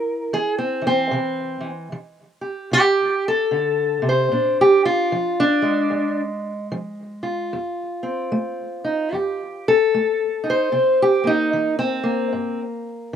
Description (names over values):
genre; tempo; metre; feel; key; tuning
acoustic country blues, solo or duo; 75 BPM; 4/4; swing 62% on 8ths; unclear; A4 = 440 Hz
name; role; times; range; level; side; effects
fingerpicked steel-string acoustic guitar; solo; 0.0-13.2 s; F2 to C5; -18 LUFS; equal; none
room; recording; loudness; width
light reverb; recorded outdoors, with no room sound; -18 LUFS; side -8 dB against mid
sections
0.0-13.2 A section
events
steel-string acoustic guitar solo 0.0-13.2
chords
0.0 C; 4.3 Bb7; 7.5 F7; 10.7 C7